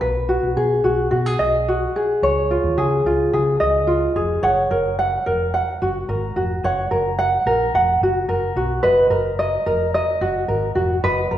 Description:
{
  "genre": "acoustic pop",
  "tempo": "109 BPM",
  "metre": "4/4",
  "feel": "straight",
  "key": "F# major",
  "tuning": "A4 = 440 Hz",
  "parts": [
    { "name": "tenor ukulele", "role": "accompaniment", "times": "0.0-11.4 s", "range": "E#4 to F#5", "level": "-18 LUFS", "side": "equal", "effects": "none" },
    { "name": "fingered electric bass", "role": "bass", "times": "0.0-11.4 s", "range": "E#1 to C#3", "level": "-25 LUFS", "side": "equal", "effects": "none" }
  ],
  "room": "wet recital hall reverb, RT60 1.5 s",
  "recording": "recorded in a church or concert hall, nothing above 10.5 kHz",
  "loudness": "-17 LUFS",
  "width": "side -11 dB against mid",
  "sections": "0.0-4.4 A section; 4.4-11.4 B section",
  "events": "none",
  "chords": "0.0 B6; 2.2 C#add9; 4.4 F#; 8.8 Bmaj7",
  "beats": "| 0.03 0.58 1.13 1.68 | 2.23 2.79 3.34 3.89 | 4.44 4.99 5.54 6.09 | 6.64 7.19 7.74 8.29 | 8.84 9.39 9.94 10.49 | 11.04"
}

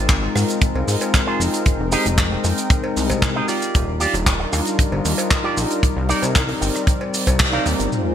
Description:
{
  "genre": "nu-disco, nu disco",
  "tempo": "115 BPM",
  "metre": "4/4",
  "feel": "straight",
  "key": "C minor",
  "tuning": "A4 = 436 Hz",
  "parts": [
    { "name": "warm analog pad", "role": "accompaniment", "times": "0.0-8.1 s", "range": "G3 to G5", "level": "-23 LUFS", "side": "left 2 dB", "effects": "chorus, sidechain pumping, digital delay" },
    { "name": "chorused synth bass", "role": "bass", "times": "0.0-7.9 s", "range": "Eb1 to Ab2", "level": "-22 LUFS", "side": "equal", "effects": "tube saturation" },
    { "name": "electric guitar with an envelope filter", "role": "riff", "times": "0.1-7.8 s", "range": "Eb4 to F5", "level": "-25 LUFS", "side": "right 4 dB", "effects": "wide subtle chorus, digital delay" },
    { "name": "damped 70s drum kit", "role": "drums", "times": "0.1-8.0 s", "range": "handclaps, hi-hat, rim click, shaker", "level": "-23 LUFS", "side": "right 1 dB", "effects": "gated reverb" },
    { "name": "kick drum", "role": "drums", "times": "0.1-7.5 s", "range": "none", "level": "-18 LUFS", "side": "equal", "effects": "none" },
    { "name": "cowbell", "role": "percussion", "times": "0.8-7.4 s", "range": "none", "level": "-30 LUFS", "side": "equal", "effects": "none" },
    { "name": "string machine, full ensemble", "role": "sustained chords", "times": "7.9-8.1 s", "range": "Ab3 to C5", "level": "-22 LUFS", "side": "left 1 dB", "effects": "ensemble chorus, sidechain pumping" },
    { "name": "sub drop", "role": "sound effects", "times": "7.9-8.1 s", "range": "none", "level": "-24 LUFS", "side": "equal", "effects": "none" }
  ],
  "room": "light reverb",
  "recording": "bright 1980s-style digital production",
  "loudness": "-17 LUFS",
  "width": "side -10 dB against mid",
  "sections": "0.0-7.9 A section",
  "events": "band accent 7.4; impact 7.9",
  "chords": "0.0 Ab6; 1.7 Fm11; 3.5 Ebmaj9; 5.8 Cm9",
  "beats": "0.10 0.62 1.14 | 1.66 2.18 2.70 3.23 | 3.75 4.27 4.79 5.31 | 5.83 6.36 6.88 7.40 | 7.92"
}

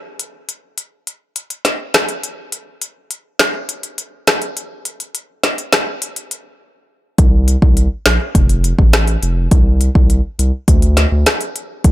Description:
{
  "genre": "dancehall",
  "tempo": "103 BPM",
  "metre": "4/4",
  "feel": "straight",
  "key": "unclear",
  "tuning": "A4 = 438 Hz",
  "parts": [
    { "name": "afro-pop drum kit", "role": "drums", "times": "0.2-11.9 s", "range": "hi-hat, kick drum, rim click, snare drum", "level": "-14 LUFS", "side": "equal", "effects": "none" },
    { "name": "saturated sub bass", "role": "bass", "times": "7.2-11.9 s", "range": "F1 to D2", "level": "-14 LUFS", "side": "equal", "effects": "none" }
  ],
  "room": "little or no reverb",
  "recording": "none",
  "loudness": "-13 LUFS",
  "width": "side -15 dB against mid",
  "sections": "0.0-11.9 A section",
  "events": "break 0.0-7.2",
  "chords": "none",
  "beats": "| 0.20 0.78 1.36 1.94 | 2.52 3.11 3.69 4.27 | 4.86 5.44 6.02 6.60 | 7.18 7.77 8.35 8.93 | 9.52 10.10 10.68 11.26 | 11.85"
}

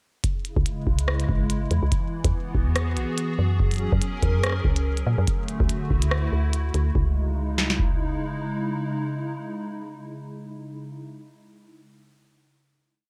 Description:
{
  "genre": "IDM",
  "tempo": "143 BPM",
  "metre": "4/4",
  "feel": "swing 56% on 16ths",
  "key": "unclear",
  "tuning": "A4 = 440 Hz",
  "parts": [
    { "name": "hollow soft pad", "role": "sustained chords", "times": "0.2-11.1 s", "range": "C#3 to A#4", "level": "-32 LUFS", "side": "equal", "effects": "ensemble chorus" },
    { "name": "booming analog drum machine", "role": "drums", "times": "0.2-7.9 s", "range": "kick drum, snare drum", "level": "-27 LUFS", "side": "equal", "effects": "none" },
    { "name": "glitchy drum kit", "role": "drums", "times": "0.2-6.8 s", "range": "hi-hat, rim click", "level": "-32 LUFS", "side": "equal", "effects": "digital delay" },
    { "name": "woody FM bass", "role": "bass", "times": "0.6-8.2 s", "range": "G#1 to A#2", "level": "-26 LUFS", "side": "equal", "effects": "none" }
  ],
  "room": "light reverb, digital ambience",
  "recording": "dark, warm production",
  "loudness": "-25 LUFS",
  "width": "mono",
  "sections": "0.2-7.0 groove; 7.0-10.3 final chord",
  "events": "none",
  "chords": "0.2 C#m; 1.9 E; 3.6 F#add9; 5.3 D; 7.0 C#m",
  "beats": "| 0.24 0.66 1.08 1.50 | 1.92 2.34 2.76 3.18 | 3.60 4.01 4.43 4.85 | 5.27 5.69 6.11 6.53 | 6.95 7.37 7.79 8.21 | 8.63 9.05 9.47 9.89"
}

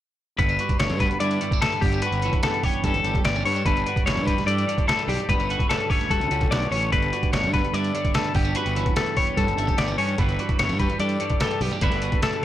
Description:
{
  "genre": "math rock and midwest emo",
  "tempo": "147 BPM",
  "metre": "4/4",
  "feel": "straight",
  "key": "G lydian",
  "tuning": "A4 = 442 Hz",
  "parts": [
    { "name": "twelve-string electric guitar", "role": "accompaniment", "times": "0.4-12.4 s", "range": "G2 to A4", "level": "-29 LUFS", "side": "right 8 dB", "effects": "phaser" },
    { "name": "twelve-string electric guitar", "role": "arpeggios", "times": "0.4-12.4 s", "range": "G4 to D5", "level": "-25 LUFS", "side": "left 6 dB", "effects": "spring reverb, tape echo" },
    { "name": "fuzz fingered electric bass", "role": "bass", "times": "0.4-12.1 s", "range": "G1 to G2", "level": "-27 LUFS", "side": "equal", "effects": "overdrive" },
    { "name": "trip hop sampler-style drum kit", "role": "drums", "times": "0.4-12.4 s", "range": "hi-hat, kick drum, snare drum", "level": "-25 LUFS", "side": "equal", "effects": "none" }
  ],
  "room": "little or no reverb",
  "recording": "none",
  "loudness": "-20 LUFS",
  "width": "side -12 dB against mid",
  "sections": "0.4-12.4 A section",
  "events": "none",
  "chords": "0.4 Gmaj9; 5.3 Dmaj7/G; 6.9 Gmaj9; 11.8 G69",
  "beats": "| 0.38 0.79 1.20 1.61 | 2.02 2.43 2.84 3.25 | 3.65 4.06 4.47 4.88 | 5.29 5.70 6.11 6.51 | 6.92 7.33 7.74 8.15 | 8.55 8.96 9.37 9.78 | 10.19 10.59 11.00 11.41 | 11.81 12.22"
}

